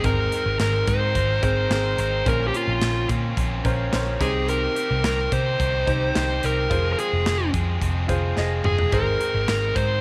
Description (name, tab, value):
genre	piano-driven pop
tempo	108 BPM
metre	4/4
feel	straight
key	unclear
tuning	A4 = 438 Hz
part	dark smooth lead guitar	melody	0.0-10.0 s	F4 to C5	-26 LUFS	equal	overdrive, slapback echo
part	clear baby grand piano	accompaniment	0.0-10.0 s	Ab2 to Eb5	-32 LUFS	equal	none
part	crunchy overdriven guitar	riff	0.0-10.0 s	F2 to Bb4	-33 LUFS	equal	none
part	vintage muted picked electric bass	bass	0.0-10.0 s	F1 to C3	-27 LUFS	equal	none
part	modern studio drum kit	drums	0.0-9.9 s	hi-hat, kick drum, snare drum, toms	-30 LUFS	equal	none
room	light reverb, small room ambience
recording	none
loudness	-22 LUFS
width	mono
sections	0.0-10.0 A section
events	drum fill 8.4-8.9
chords	0.0 Abadd9; 2.3 Bbmadd9; 4.2 Cm; 6.7 Fm; 8.9 Abadd9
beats	| 0.04 0.60 1.16 1.71 | 2.27 2.82 3.38 3.93 | 4.49 5.04 5.60 6.15 | 6.71 7.26 7.82 8.37 | 8.93 9.48